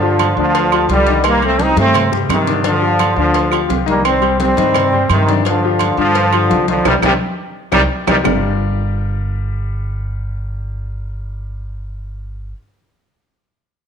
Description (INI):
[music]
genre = latin, salsa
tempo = 171 BPM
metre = 4/4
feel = straight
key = G minor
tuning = A4 = 443 Hz
[part]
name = brilliant trombone section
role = melody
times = 0.0-8.2 s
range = C3 to Eb4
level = -15 LUFS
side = right 1 dB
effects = none
[part]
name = clear baby grand piano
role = accompaniment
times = 0.0-12.5 s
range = D3 to Eb5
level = -21 LUFS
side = left 12 dB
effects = none
[part]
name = upright bass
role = bass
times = 0.0-12.5 s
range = G1 to G2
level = -20 LUFS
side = equal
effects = none
[part]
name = congas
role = percussion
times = 0.0-8.3 s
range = none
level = -24 LUFS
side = equal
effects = none
[part]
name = agogo bells and timbales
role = percussion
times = 0.2-8.3 s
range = none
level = -22 LUFS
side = right 15 dB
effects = none
[part]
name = claves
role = percussion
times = 0.2-8.3 s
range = none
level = -27 LUFS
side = right 13 dB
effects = none
[part]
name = cowbell and bongos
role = percussion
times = 0.2-8.3 s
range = none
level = -26 LUFS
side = left 12 dB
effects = none
[sound]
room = moderate echo chamber reverb, RT60 1.4 s, small room ambience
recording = 1960s-style stereo with parts hard left and right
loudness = -13 LUFS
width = side -7 dB against mid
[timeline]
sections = 0.0-8.3 A section; 8.3-11.1 B section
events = drum fill 1.8-2.6; band accent 6.9-8.3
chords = 0.0 G5; 1.2 Cm; 2.6 G5; 4.0 Cm; 5.5 G5; 6.9 Cm; 8.3 Gm7